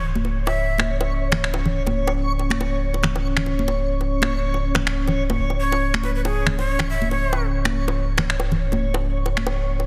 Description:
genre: deep dubstep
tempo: 140 BPM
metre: 4/4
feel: swing 55% on 16ths, half-time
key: unclear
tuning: A4 = 440 Hz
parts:
  - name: breathy bright shakuhachi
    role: melody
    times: 0.0-0.9, 5.6-7.4 s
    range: G#4 to E5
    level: -30 LUFS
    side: equal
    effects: dub echo
  - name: deep dark ambient pad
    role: sustained chords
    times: 0.6-9.9 s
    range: C#4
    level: -33 LUFS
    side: equal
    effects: chorus, built-in reverb
  - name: soft dub sub bass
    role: bass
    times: 0.0-9.9 s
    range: C#1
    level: -26 LUFS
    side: equal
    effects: tube saturation
  - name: backwards swelling texture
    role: texture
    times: 0.4-9.9 s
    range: C#5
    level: -32 LUFS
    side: equal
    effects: built-in reverb
  - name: congas and bongos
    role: percussion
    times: 0.2-9.9 s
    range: none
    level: -29 LUFS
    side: equal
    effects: dub echo
  - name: electronic finger snaps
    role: drums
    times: 0.8-9.4 s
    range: none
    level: -29 LUFS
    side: equal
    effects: soft clipping on snare, studio reverb
room: light reverb, digital ambience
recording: dense, heavily limited modern master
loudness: -22 LUFS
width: mono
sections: 0.0-9.9 A section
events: filter sweep on ambient pad 0.0-9.9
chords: none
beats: | 0.25 0.68 1.11 1.54 | 1.96 2.39 2.82 3.25 | 3.68 4.11 4.54 4.96 | 5.39 5.82 6.25 6.68 | 7.11 7.54 7.96 8.39 | 8.82 9.25 9.68

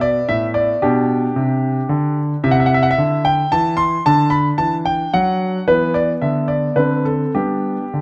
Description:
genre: classical-period piano sonatina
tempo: 111 BPM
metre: 3/4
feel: rubato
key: G major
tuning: A4 = 441 Hz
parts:
  - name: clear concert grand piano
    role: solo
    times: 0.0-8.0 s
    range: A2 to C6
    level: -17 LUFS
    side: equal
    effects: none
room: moderate recital hall reverb, RT60 1.4 s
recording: close, detailed microphones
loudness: -17 LUFS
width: mono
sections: 0.0-8.0 A section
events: none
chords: 0.0 G (rootless); 0.8 G/B; 2.4 C; 4.1 D; 5.7 E5; 6.2 Bmadd11/D; 6.8 D5; 7.3 G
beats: 0.28 | 0.82 1.36 1.90 | 2.44 2.98 3.52 | 4.06 4.59 5.13 | 5.67 6.22 6.78 | 7.35 7.93

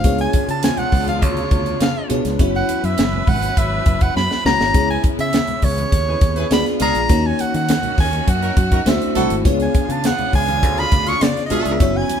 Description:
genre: polished 1980s jazz-funk pop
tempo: 102 BPM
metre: 4/4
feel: straight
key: C# dorian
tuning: A4 = 441 Hz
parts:
  - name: clear soprano saxophone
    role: melody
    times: 0.0-12.2 s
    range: C#5 to C#6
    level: -22 LUFS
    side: right 2 dB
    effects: none
  - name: bell-like FM electric piano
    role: accompaniment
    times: 0.0-12.2 s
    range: A3 to D5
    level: -23 LUFS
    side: left 2 dB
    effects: chorus
  - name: warm symphonic string section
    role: sustained chords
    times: 0.0-12.2 s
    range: C#3 to B4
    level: -27 LUFS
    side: left 1 dB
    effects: none
  - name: fingered electric bass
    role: bass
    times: 0.0-12.0 s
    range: F#1 to D#3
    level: -23 LUFS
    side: left 1 dB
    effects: none
  - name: tight funk drum kit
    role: drums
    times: 0.0-12.2 s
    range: hi-hat, kick drum, snare drum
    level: -18 LUFS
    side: equal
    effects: none
  - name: congas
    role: percussion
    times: 0.3-12.2 s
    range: none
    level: -32 LUFS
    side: right 4 dB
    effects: none
  - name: mellow horn section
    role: second line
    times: 6.1-11.8 s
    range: D4 to B4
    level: -25 LUFS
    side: right 2 dB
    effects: none
room: light reverb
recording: band playing live in one room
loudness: -15 LUFS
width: side -8 dB against mid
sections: 0.0-12.2 A section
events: drum fill 4.2-4.7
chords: 0.0 C#7b9; 2.4 F#7sus4; 4.7 C#m9; 6.5 Ddim7; 7.1 D#m7; 8.9 D9; 9.4 C#7b9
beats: | 0.04 0.63 1.22 1.81 | 2.39 2.98 3.57 4.16 | 4.75 5.33 5.92 6.51 | 7.10 7.68 8.27 8.86 | 9.45 10.04 10.63 11.22 | 11.80

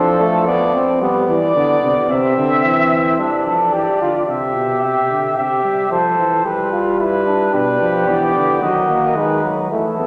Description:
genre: classical, imitative canzona for brass ensemble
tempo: 110 BPM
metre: 4/4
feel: straight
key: unclear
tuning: A4 = 440 Hz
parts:
  - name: mellow trumpet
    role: melody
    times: 0.0-10.1 s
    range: A4 to E5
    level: -21 LUFS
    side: equal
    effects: none
  - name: clear trombone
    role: accompaniment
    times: 0.0-3.2, 7.5-10.1 s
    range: F#3 to D4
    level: -22 LUFS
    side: equal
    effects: none
  - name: mellow bass trombone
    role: bass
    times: 0.0-10.1 s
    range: B2 to G3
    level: -23 LUFS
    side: equal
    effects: none
  - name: mellow flugelhorn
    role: second line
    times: 3.2-10.1 s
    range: D4 to A4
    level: -20 LUFS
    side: equal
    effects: none
room: wet church reverb, RT60 2.7 s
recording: none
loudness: -16 LUFS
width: mono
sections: 0.0-3.2 A section; 3.2-10.1 B section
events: none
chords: 0.0 Dm/F; 1.0 G; 2.1 C; 3.2 G5; 4.3 C; 6.5 G; 7.5 Bdim; 8.6 B/D#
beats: 0.47 | 1.01 1.56 2.10 2.65 | 3.20 3.74 4.29 4.83 | 5.38 5.92 6.46 7.00 | 7.54 8.08 8.62 9.16 | 9.71

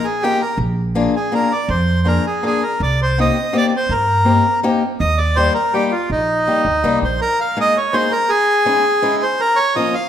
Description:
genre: musette waltz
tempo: 164 BPM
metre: 3/4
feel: straight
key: Eb major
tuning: A4 = 440 Hz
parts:
  - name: bandoneon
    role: melody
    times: 0.0-10.1 s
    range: Eb4 to F5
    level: -16 LUFS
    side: right 1 dB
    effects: none
  - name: picked swing-style acoustic guitar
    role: accompaniment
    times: 0.0-9.9 s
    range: F3 to Bb4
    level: -21 LUFS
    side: left 4 dB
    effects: none
  - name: upright bass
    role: bass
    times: 0.6-7.2 s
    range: Bb1 to G2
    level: -20 LUFS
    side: right 1 dB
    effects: none
room: moderate recital hall reverb, RT60 1.5 s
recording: minimal, uncompressed stereo recording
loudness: -14 LUFS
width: side -9 dB against mid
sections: 0.0-7.2 A section; 7.2-10.1 B section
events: none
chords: 0.0 Ebsus2; 0.6 Bb7; 2.8 Cm7; 5.0 Eb; 7.2 Absus2; 8.3 Dbmadd9; 9.4 Bbm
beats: 0.23 | 0.60 0.96 1.33 | 1.70 2.06 2.43 | 2.80 3.17 3.54 | 3.91 4.27 4.64 | 5.00 5.37 5.73 | 6.10 6.47 6.84 | 7.21 7.57 7.94 | 8.30 8.67 9.03 | 9.40 9.76

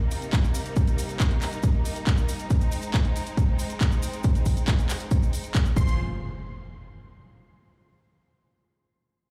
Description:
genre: uplifting trance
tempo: 138 BPM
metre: 4/4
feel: straight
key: unclear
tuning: A4 = 440 Hz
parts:
  - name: clear symphonic string section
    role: sustained chords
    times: 0.0-6.0 s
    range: C3 to C5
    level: -36 LUFS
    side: equal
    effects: sidechain pumping
  - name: house drum kit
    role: drums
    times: 0.1-5.6 s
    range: handclaps, hi-hat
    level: -36 LUFS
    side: equal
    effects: overdrive, sidechain pumping on hats
  - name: maracas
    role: percussion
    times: 0.1-6.0 s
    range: none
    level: -45 LUFS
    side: equal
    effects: none
  - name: electronic kick drum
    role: drums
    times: 0.3-5.9 s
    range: none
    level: -24 LUFS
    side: equal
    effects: overdrive
  - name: big supersaw lead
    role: melody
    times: 5.8-5.9 s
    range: C6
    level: -44 LUFS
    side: equal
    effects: sidechain pumping, tape echo
  - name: tight sequencer bass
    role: bass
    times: 5.8-6.0 s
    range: F1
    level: -34 LUFS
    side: equal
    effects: none
  - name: impact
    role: sound effects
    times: 5.8-7.5 s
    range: none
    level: -36 LUFS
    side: equal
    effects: none
room: little or no reverb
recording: played on a big sound system in a bare room, large studio reverb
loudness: -25 LUFS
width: mono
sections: 0.0-6.0 A section; 6.0-7.7 B section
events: none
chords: 0.0 Cm7; 2.5 Ab; 5.8 Fm; 6.0 N.C.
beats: 0.33 | 0.77 1.20 1.64 2.07 | 2.50 2.94 3.37 3.81 | 4.24 4.68 5.11 5.55 | 5.98 6.42 6.85 7.29

